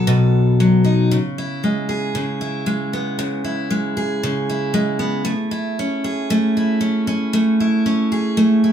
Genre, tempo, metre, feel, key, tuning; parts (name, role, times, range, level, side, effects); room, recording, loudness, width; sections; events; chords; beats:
pop; 116 BPM; 4/4; straight; A4 = 440 Hz
picked steel-string acoustic guitar; solo; 0.0-8.7 s; B2 to A4; -16 LUFS; equal
wet studio reverb, RT60 0.6 s; band playing live in one room; -17 LUFS; side -9 dB against mid
0.0-1.1 A section; 1.1-8.7 B section
0.0 B7; 1.1 C#m7; 5.3 Amaj7
0.08 0.60 | 1.12 1.64 2.16 2.68 | 3.20 3.72 4.24 4.75 | 5.27 5.79 6.31 6.83 | 7.35 7.87 8.39